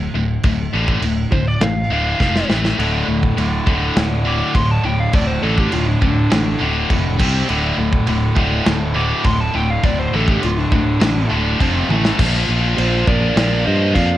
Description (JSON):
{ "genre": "heavy metal", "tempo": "102 BPM", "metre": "4/4", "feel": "straight", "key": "D minor", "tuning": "A4 = 440 Hz", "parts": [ { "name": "high-gain distorted guitar", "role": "riff", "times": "0.0-14.2 s", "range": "D2 to C4", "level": "-23 LUFS", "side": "right 6 dB", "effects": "distortion, cassette tape" }, { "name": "tight distorted guitar", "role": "riff", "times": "0.0-14.2 s", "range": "D2 to C4", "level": "-22 LUFS", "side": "left 7 dB", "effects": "distortion, cassette tape" }, { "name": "modern bright fingered electric bass", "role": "bass", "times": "0.0-14.2 s", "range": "D1 to G2", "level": "-20 LUFS", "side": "equal", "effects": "none" }, { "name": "modern studio drum kit", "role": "drums", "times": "0.4-14.1 s", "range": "crash cymbal, kick drum, snare drum, toms", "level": "-20 LUFS", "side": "equal", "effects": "cassette tape" }, { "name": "high-gain lead guitar", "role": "melody", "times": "1.3-14.2 s", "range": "D4 to D6", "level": "-24 LUFS", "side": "equal", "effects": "distortion, cassette tape, analog delay" }, { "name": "tight distorted guitar", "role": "riff", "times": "2.8-12.2 s", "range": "D2 to C4", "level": "-23 LUFS", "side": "equal", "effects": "distortion, cassette tape" }, { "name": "high-gain lead guitar", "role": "second line", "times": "12.8-14.2 s", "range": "F4 to D5", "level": "-25 LUFS", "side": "right 8 dB", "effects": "distortion, cassette tape" } ], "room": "little or no reverb", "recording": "home recording on cassette", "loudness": "-14 LUFS", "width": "side -13 dB against mid", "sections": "0.0-12.2 A section; 12.2-14.2 B section", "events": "lead electric guitar solo 0.0-12.2; drum fill 2.2-2.8, 11.9", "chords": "0.0 Dm; 2.2 F5; 2.5 A5; 2.8 D5; 7.2 C5; 7.5 D5; 11.6 F5; 11.9 A5; 12.2 Bb" }